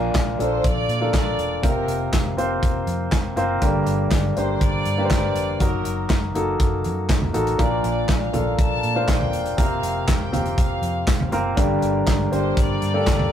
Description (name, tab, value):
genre	piano-driven pop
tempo	121 BPM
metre	4/4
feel	straight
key	Bb major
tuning	A4 = 440 Hz
part	warm concert grand piano	accompaniment	0.0-13.3 s	G2 to C5	-22 LUFS	left 1 dB	none
part	vintage muted fingered electric bass	bass	0.0-13.3 s	E1 to Bb2	-28 LUFS	equal	none
part	modern studio drum kit	drums	0.1-13.3 s	handclaps, hi-hat, kick drum, snare drum, toms	-22 LUFS	equal	none
part	clear chamber violin section	melody	0.4-13.3 s	Bb4 to A5	-30 LUFS	equal	none
room	moderate studio reverb, RT60 0.6 s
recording	rough rehearsal-room recording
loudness	-19 LUFS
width	side -10 dB against mid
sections	0.0-13.3 A section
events	none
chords	0.0 Bb; 1.6 Fsus4; 3.6 Gm; 5.6 Ebm/Gb; 7.6 Bb; 9.6 Fsus4; 11.6 Gm